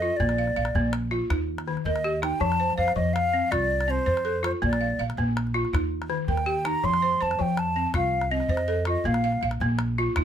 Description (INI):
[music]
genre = west african traditional, West African string and xylophone music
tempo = 108 BPM (dotted quarters)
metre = 12/8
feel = straight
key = F mixolydian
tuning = A4 = 440 Hz
[part]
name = mellow hollow silver concert flute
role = melody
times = 0.0-9.5 s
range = C5 to C6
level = -26 LUFS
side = equal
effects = none
[part]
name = balafon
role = arpeggios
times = 0.0-10.2 s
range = Eb3 to F5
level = -27 LUFS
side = equal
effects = none
[part]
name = upright bass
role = bass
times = 0.0-10.2 s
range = Bb1 to F2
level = -29 LUFS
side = equal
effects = none
[part]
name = calabash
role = percussion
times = 0.2-10.2 s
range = none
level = -31 LUFS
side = left 1 dB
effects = none
[sound]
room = light reverb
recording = none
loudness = -23 LUFS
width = side -9 dB against mid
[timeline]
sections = 0.0-10.2 A section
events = none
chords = 0.2 Bb; 1.3 Eb; 2.4 F; 4.6 Bb; 5.7 Eb; 6.8 F; 9.1 Bb5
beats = | 0.20 0.75 1.30 1.86 | 2.41 2.96 3.52 4.07 | 4.62 5.18 5.73 6.28 | 6.84 7.39 7.95 8.50 | 9.05 9.61 10.16